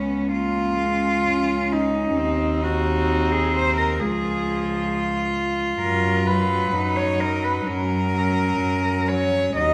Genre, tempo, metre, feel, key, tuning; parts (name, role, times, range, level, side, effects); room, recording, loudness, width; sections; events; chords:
classical, lyrical piece for cello ensemble; 62-68 BPM; 4/4; rubato; F# major; A4 = 441 Hz
rich cello; melody; 0.0-9.7 s; G#3 to E#4; -29 LUFS; equal
warm cello; second line; 0.0-9.7 s; C#4 to D#5; -25 LUFS; equal
rich cello; accompaniment; 0.0-9.7 s; E#3 to C#4; -33 LUFS; equal
warm cello; bass; 0.0-9.7 s; C#2 to F#2; -27 LUFS; equal
wet recital hall reverb, RT60 1.6 s; -22 LUFS; mono
0.0-9.7 A section
0.0 C#; 2.2 D#m6; 4.0 C#; 5.8 F#